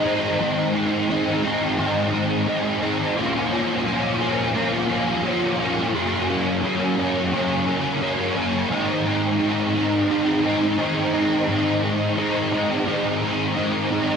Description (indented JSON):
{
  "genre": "rock",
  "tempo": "87 BPM",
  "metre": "4/4",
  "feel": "straight",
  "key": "Ab mixolydian",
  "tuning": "A4 = 441 Hz",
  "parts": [
    { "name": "overdriven electric guitar", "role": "solo", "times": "0.0-14.2 s", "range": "Gb2 to Eb4", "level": "-19 LUFS", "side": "equal", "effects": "ensemble chorus, diffuse ambient delay" }
  ],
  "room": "wet plate reverb, RT60 3.5 s",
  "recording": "dreamy mix soaked in reverb",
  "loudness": "-19 LUFS",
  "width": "side -6 dB against mid",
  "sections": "0.0-14.2 A section",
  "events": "none",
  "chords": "0.0 Ab; 3.2 Bbm; 5.9 Gb; 8.7 Ab"
}